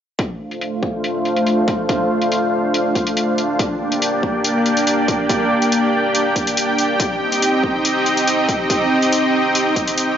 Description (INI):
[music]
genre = heavy wobble dubstep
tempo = 141 BPM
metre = 4/4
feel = half-time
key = D phrygian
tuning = A4 = 440 Hz
[part]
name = supersaw pad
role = sustained chords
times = 0.2-10.2 s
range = A3 to G5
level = -16 LUFS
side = equal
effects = sidechain pumping, low-pass filter
[part]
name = electronic hi-hat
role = drums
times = 0.2-10.1 s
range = none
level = -23 LUFS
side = left 2 dB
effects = overdrive, low-pass filter on hats
[part]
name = electronic kick drum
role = drums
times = 0.2-9.9 s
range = none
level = -23 LUFS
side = equal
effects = high-pass filter on kick, high-pass filter on room
[sound]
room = wet lush hall reverb, RT60 1.9 s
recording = dreamy mix soaked in reverb, nothing above 7.5 kHz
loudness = -15 LUFS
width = side -9 dB against mid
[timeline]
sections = 0.2-10.2 A section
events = filter sweep on supersaw synth 0.2-10.2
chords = 0.2 Dm7; 3.6 Gm; 7.0 Cm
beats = | 0.19 0.61 1.04 1.47 | 1.89 2.32 2.74 3.17 | 3.59 4.02 4.44 4.87 | 5.29 5.72 6.15 6.57 | 7.00 7.42 7.85 8.27 | 8.70 9.12 9.55 9.98